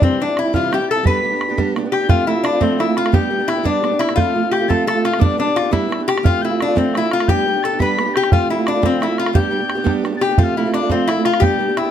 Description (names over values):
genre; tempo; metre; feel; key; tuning
celtic folk, Celtic jig; 116 BPM (dotted quarters); 6/8; straight; unclear; A4 = 440 Hz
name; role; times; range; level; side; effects
lap resonator guitar; melody; 0.0-11.9 s; C4 to B4; -19 LUFS; left 4 dB; none
mellow tin whistle; second line; 0.0-11.9 s; C6 to B6; -25 LUFS; left 5 dB; none
fingerpicked acoustic archtop guitar; accompaniment; 0.0-11.9 s; C3 to G4; -20 LUFS; right 5 dB; none
bodhran; percussion; 0.0-11.8 s; none; -17 LUFS; right 2 dB; none
room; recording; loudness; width
moderate studio reverb, RT60 0.7 s; none; -15 LUFS; side -9 dB against mid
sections
0.0-2.1 A section; 2.1-10.4 B section; 10.4-11.9 B section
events
none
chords
0.0 C; 1.1 G; 2.1 F; 3.1 G; 4.2 F; 5.2 G; 6.2 F; 7.3 G; 8.3 F; 9.3 G; 10.4 F